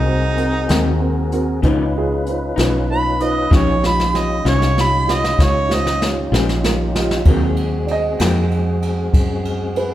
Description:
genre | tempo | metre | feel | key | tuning
slow blues | 64 BPM (dotted quarters) | 12/8 | straight | Ab mixolydian | A4 = 440 Hz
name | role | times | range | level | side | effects
clear harmonica | melody | 0.0-6.0 s | Eb4 to Cb6 | -20 LUFS | right 2 dB | overdrive
tonewheel organ | sustained chords | 0.0-9.9 s | Ab3 to Cb5 | -25 LUFS | left 1 dB | slow rotary speaker
fingered electric bass | bass | 0.0-9.9 s | Bb1 to Gb2 | -20 LUFS | equal | none
dark upright piano | accompaniment | 0.1-9.9 s | Gb3 to Bb5 | -23 LUFS | right 2 dB | none
jazz brush drum kit | drums | 0.4-9.9 s | hi-hat, kick drum, ride cymbal, snare drum | -18 LUFS | equal | none
electric guitar through a small old amp | accompaniment | 0.7-8.4 s | Ab2 to F4 | -24 LUFS | left 4 dB | tremolo
room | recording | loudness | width
moderate recital hall reverb, RT60 1.4 s | recorded in a church or concert hall | -15 LUFS | side -13 dB against mid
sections
0.0-7.3 A section; 7.3-9.9 A section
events
harmonica solo 0.0-7.3; drum fill 3.5-7.3; upright piano fill 6.3-7.3; upright piano solo 7.3-9.9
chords
0.0 Ab9; 1.6 Db9; 3.5 Eb9; 7.3 Ab9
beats
0.69 1.64 2.58 | 3.52 4.45 5.39 6.33 | 7.27 8.21 9.14

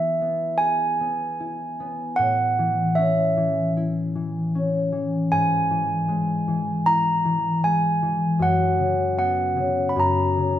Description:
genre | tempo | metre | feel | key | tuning
children's music, lullaby | 77 BPM | 4/4 | rubato | unclear | A4 = 440 Hz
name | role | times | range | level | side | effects
handbells | melody | 0.0-10.6 s | E5 to B5 | -22 LUFS | right 2 dB | none
concert harp | accompaniment | 0.0-10.6 s | F#2 to G#4 | -23 LUFS | left 3 dB | none
room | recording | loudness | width
moderate recital hall reverb, RT60 1.3 s | none | -20 LUFS | side -11 dB against mid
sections
0.0-10.6 A section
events
none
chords
0.0 E; 2.2 A6; 5.3 E/G#; 8.4 F#sus4; 10.0 F#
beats
0.60 1.40 | 2.19 2.98 3.76 4.54 | 5.31 6.08 6.85 7.63 | 8.39 9.17 9.96

